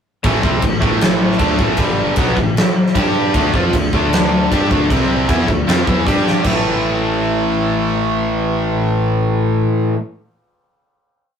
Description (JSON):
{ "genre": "hard rock", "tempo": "155 BPM", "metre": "4/4", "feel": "straight", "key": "A minor", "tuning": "A4 = 441 Hz", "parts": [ { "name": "cranked stack guitar", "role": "riff", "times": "0.2-10.0 s", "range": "G2 to G4", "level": "-20 LUFS", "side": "equal", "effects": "overdrive" }, { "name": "distorted electric guitar", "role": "riff", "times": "0.2-10.0 s", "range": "G2 to G4", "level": "-20 LUFS", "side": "left 4 dB", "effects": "distortion" }, { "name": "distorted electric guitar", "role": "riff", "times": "0.2-10.0 s", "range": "G2 to G4", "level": "-22 LUFS", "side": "right 6 dB", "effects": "overdrive" }, { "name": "modern bright fingered electric bass", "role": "bass", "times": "0.2-9.6 s", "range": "G1 to G2", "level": "-23 LUFS", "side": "equal", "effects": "none" }, { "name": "huge arena drum kit", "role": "drums", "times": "0.2-6.5 s", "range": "crash cymbal, kick drum, snare drum", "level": "-16 LUFS", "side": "equal", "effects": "none" } ], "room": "moderate studio reverb, RT60 0.5 s", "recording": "rough rehearsal-room recording, warm saturation", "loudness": "-13 LUFS", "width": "side -7 dB against mid", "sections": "0.2-6.4 riff; 6.4-9.5 final chord", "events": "drum fill 6.3", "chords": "0.2 Am; 1.8 G5; 2.2 A5; 3.0 G5; 3.3 D5; 4.9 C5; 5.3 D5; 6.1 G5; 6.4 A5", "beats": "| 0.24 0.62 1.01 1.40 | 1.79 2.17 2.56 2.95 | 3.34 3.73 4.12 4.51 | 4.89 5.28 5.67 6.06 | 6.45 6.83 7.22 7.61 | 7.99 8.38 8.77 9.15" }